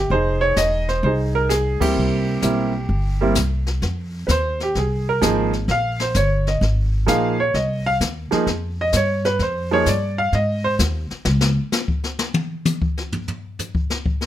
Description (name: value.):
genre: jazz piano trio.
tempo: 129 BPM.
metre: 4/4.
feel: swing 68% on 8ths.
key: F minor.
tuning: A4 = 440 Hz.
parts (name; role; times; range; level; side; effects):
clear concert grand piano; melody; 0.0-10.7 s; F3 to F5; -20 LUFS; right 2 dB; none.
upright bass; bass; 0.0-11.6 s; E1 to Ab2; -21 LUFS; equal; none.
jazz brush drum kit; drums; 0.1-14.3 s; brushed snare drum, hi-hat, kick drum, ride cymbal, snare drum, toms; -24 LUFS; left 2 dB; none.
room: light reverb.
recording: none.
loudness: -18 LUFS.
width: side -12 dB against mid.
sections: 0.0-3.8 A section; 3.8-14.3 B section.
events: band accent 1.7; grand piano solo 3.8-14.3; drum solo 11.3-14.3.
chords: 0.1 Fm7; 2.0 C7; 3.8 Fm7; 5.7 Bb5; 7.5 Fm7; 11.3 N.C..